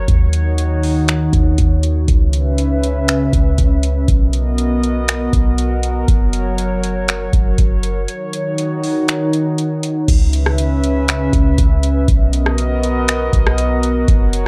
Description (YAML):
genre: hip hop, atmospheric cloud-rap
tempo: 120 BPM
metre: 4/4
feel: half-time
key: C# dorian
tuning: A4 = 440 Hz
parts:
  - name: warbly tape-like pad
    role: sustained chords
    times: 0.0-14.5 s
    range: C#3 to E5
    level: -21 LUFS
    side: equal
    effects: chorus, built-in reverb, sidechain pumping
  - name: clean 808-style bass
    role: bass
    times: 0.0-14.5 s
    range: F#1 to D#2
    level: -19 LUFS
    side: equal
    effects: none
  - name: booming analog drum machine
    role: drums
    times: 0.1-14.4 s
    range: crash cymbal, finger snaps, hi-hat, kick drum, rim click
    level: -18 LUFS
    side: equal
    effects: none
room: little or no reverb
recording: dry, gritty hardware recording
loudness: -16 LUFS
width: mono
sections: 0.0-10.1 A section; 10.1-14.5 B section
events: kick muted 8.1-10.1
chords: 0.1 D#m7; 2.1 C#m7; 4.1 Bmaj7; 6.1 F#; 8.1 D#m7; 10.1 C#m7; 12.1 Bmaj7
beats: | 0.08 0.58 1.08 1.58 | 2.08 2.58 3.08 3.58 | 4.08 4.58 5.08 5.58 | 6.08 6.58 7.08 7.58 | 8.08 8.58 9.08 9.58 | 10.08 10.58 11.08 11.58 | 12.08 12.58 13.08 13.58 | 14.08